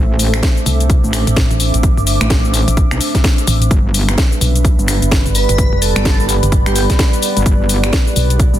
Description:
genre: bass house.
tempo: 128 BPM.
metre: 4/4.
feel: swing 60% on 16ths.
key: unclear.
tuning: A4 = 440 Hz.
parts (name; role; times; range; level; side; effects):
dark analog pad; sustained chords; 0.0-8.6 s; G3 to C5; -24 LUFS; right 2 dB; lush chorus, sidechain pumping.
metallic wobble bass; bass; 0.0-8.6 s; G1 to B1; -16 LUFS; equal; chorus, overdrive, sidechain pumping.
warbly tape-like pad; texture; 0.0-8.6 s; B3 to D6; -22 LUFS; equal; chorus, built-in reverb, phaser, sidechain pumping.
house drum kit; drums; 0.2-8.6 s; finger snaps, hi-hat, shaker, snare drum; -18 LUFS; left 2 dB; none.
electronic kick drum; drums; 0.4-8.5 s; none; -13 LUFS; equal; none.
pulsing pluck wobble bass; bass; 0.7-8.5 s; F1 to C2; -15 LUFS; equal; chorus, tube saturation, sidechain pumping.
airy dreamy lead; melody; 5.3-6.8 s; G4 to B4; -24 LUFS; right 2 dB; chorus, phaser, dub echo.
room: little or no reverb.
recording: dense, heavily limited modern master.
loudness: -11 LUFS.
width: side -12 dB against mid.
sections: 0.0-8.6 A section.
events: none.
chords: 0.0 Am; 3.7 G.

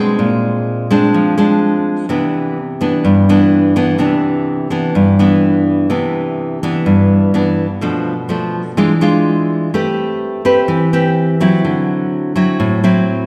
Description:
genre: bossa nova.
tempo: 126 BPM.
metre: 4/4.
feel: straight.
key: C major.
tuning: A4 = 440 Hz.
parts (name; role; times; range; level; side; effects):
nylon-string guitar; solo; 0.0-13.3 s; G2 to B4; -14 LUFS; equal; none.
room: wet concert hall reverb, RT60 2.0 s.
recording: recorded in a church or concert hall.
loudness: -14 LUFS.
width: mono.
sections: 0.0-5.9 A section; 5.9-13.3 A section.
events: none.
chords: 0.2 Bb9; 2.1 Cmaj9; 7.8 Bm7b5; 8.8 E7b9; 9.7 Am9; 11.6 D9.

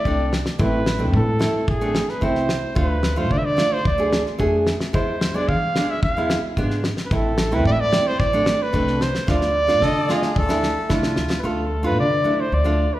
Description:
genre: klezmer.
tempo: 110 BPM.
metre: 4/4.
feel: straight.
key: D dorian sharp4.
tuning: A4 = 438 Hz.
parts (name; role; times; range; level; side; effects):
warm cornet; melody; 0.0-13.0 s; G#4 to F5; -23 LUFS; right 1 dB; none.
nylon-string guitar; accompaniment; 0.1-12.9 s; G#3 to G#4; -24 LUFS; right 1 dB; none.
upright bass; bass; 0.1-12.8 s; A1 to E3; -24 LUFS; equal; none.
damped 70s drum kit; drums; 0.1-11.4 s; kick drum, snare drum; -24 LUFS; equal; none.
accordion; second line; 9.8-11.4 s; F4 to A4; -26 LUFS; left 2 dB; none.
room: wet recital hall reverb, RT60 1.6 s.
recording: heard from further back in the room.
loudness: -18 LUFS.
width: side -15 dB against mid.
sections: 0.0-11.4 A section; 11.4-13.0 A section.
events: drum fill 9.3-11.4.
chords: 0.0 Am; 2.8 Dm; 4.9 E; 7.1 Am; 9.3 Dm.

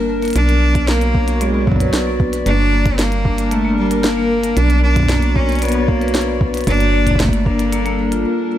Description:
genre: IDM.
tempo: 114 BPM.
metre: 4/4.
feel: straight.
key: unclear.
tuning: A4 = 439 Hz.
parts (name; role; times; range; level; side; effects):
warbly tape-like pad; sustained chords; 0.0-8.6 s; G3 to A5; -23 LUFS; equal; chorus, built-in reverb, phaser.
vibraphone with medium hard mallets; arpeggios; 0.0-8.6 s; Bb3 to B4; -21 LUFS; left 3 dB; vintage 12-bit sampler grit, tape echo.
woody FM bass; bass; 0.0-8.3 s; G1 to B1; -18 LUFS; equal; tube saturation.
glitchy drum kit; drums; 0.2-8.2 s; hi-hat, snare drum; -23 LUFS; equal; overdrive, studio reverb, digital delay.
bright cello; melody; 0.4-8.3 s; F#3 to D4; -20 LUFS; equal; ping-pong delay.
electronic kick drum; drums; 0.8-7.6 s; none; -17 LUFS; equal; overdrive, studio reverb.
room: little or no reverb.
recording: none.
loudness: -13 LUFS.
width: side -12 dB against mid.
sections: 0.0-8.6 A section.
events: none.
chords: 0.4 Bm; 2.5 Gm; 4.6 Bm; 6.7 Gm7.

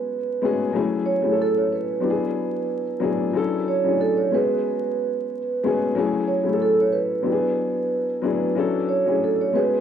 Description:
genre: hip hop.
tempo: 92 BPM.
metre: 4/4.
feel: swing 54% on 16ths.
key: F# minor.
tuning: A4 = 441 Hz.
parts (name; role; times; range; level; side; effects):
vibraphone with soft mallets; melody; 0.0-9.8 s; A4 to C#5; -23 LUFS; right 6 dB; high-pass filter, low-pass filter, cassette tape, tape echo.
dark baby grand piano; accompaniment; 0.0-9.8 s; F#3 to A4; -23 LUFS; left 5 dB; high-pass filter, low-pass filter, cassette tape.
room: light reverb, small room ambience.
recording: home recording on cassette, vinyl crackle.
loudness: -20 LUFS.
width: side -8 dB against mid.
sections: 0.0-9.8 A section.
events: none.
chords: 0.0 C#7sus4; 0.7 F#m7; 2.1 E7; 3.4 Dmaj7; 4.3 C#7sus4; 6.0 F#m7; 7.3 E7; 8.6 Dmaj7.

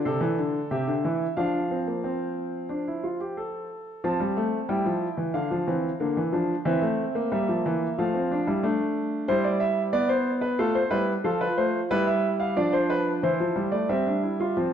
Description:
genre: classical, baroque-style 3-part fugue for grand piano.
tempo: 91 BPM.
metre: 4/4.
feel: straight.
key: F major.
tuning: A4 = 440 Hz.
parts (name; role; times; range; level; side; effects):
warm concert grand piano; solo; 0.0-14.7 s; C3 to A5; -23 LUFS; equal; none.
room: moderate recital hall reverb, RT60 1.5 s.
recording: dark, warm production.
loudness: -23 LUFS.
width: side -8 dB against mid.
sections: 0.0-4.0 A section; 4.0-14.6 B section.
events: none.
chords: 0.1 C69; 0.7 C; 1.4 F; 5.4 Bb/D; 6.7 C7/E; 8.0 F; 9.3 C/G; 10.6 F; 11.9 G7; 13.2 C/E.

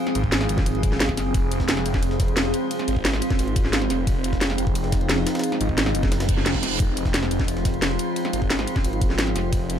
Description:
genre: dark technical drum and bass.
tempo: 176 BPM.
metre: 4/4.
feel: straight.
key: F minor.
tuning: A4 = 440 Hz.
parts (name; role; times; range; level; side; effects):
metallic inharmonic drone; sustained chords; 0.0-9.8 s; F3 to Ab4; -28 LUFS; left 1 dB; chorus, built-in reverb, sidechain pumping.
granular cloud pad; texture; 0.0-9.8 s; C4 to F5; -29 LUFS; right 1 dB; built-in reverb, sidechain pumping.
drum and bass drum kit; drums; 0.1-9.8 s; hi-hat, snare drum; -25 LUFS; equal; none.
jungle sampler-style drum kit; drums; 0.1-9.8 s; ride cymbal, snare drum; -36 LUFS; equal; none.
phased detuned saw bass; bass; 0.2-9.8 s; F1 to Ab1; -26 LUFS; equal; phaser, tube saturation.
electronic kick drum; drums; 0.2-9.6 s; none; -24 LUFS; equal; none.
reverse cymbal; sound effects; 6.2-6.8 s; none; -30 LUFS; right 7 dB; none.
room: digital ambience.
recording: none.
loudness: -20 LUFS.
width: side -9 dB against mid.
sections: 0.0-9.8 A section.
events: reverse cymbal 6.2-6.8.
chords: 0.0 Fm.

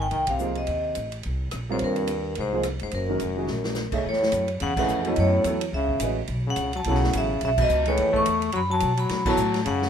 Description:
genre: modal jazz.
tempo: 214 BPM.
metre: 4/4.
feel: swing 58% on 8ths.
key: Ab major, B mixolydian from 4.1 s.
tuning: A4 = 440 Hz.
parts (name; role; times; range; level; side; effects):
vibraphone with medium hard mallets; melody; 0.0-9.9 s; Bb4 to C#6; -26 LUFS; right 1 dB; none.
brilliant trombone; second line; 0.0-9.9 s; Gb2 to A3; -29 LUFS; left 6 dB; none.
upright bass; bass; 0.0-9.9 s; F1 to C#3; -28 LUFS; equal; none.
swinging big-band drum kit; drums; 0.1-9.9 s; crash cymbal, hi-hat, kick drum, ride cymbal, rim click, snare drum; -32 LUFS; left 1 dB; none.
warm concert grand piano; accompaniment; 0.4-9.4 s; C3 to Fb5; -28 LUFS; right 4 dB; none.
room: light reverb.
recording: minimal, uncompressed stereo recording.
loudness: -22 LUFS.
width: side -8 dB against mid.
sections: 0.0-4.1 A section; 4.1-9.9 B section.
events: band accent 0.3, 4.8, 7.6, 9.2; drum fill 3.5.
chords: 0.0 Abmaj9 (rootless); 2.9 Gb; 4.1 B9sus4.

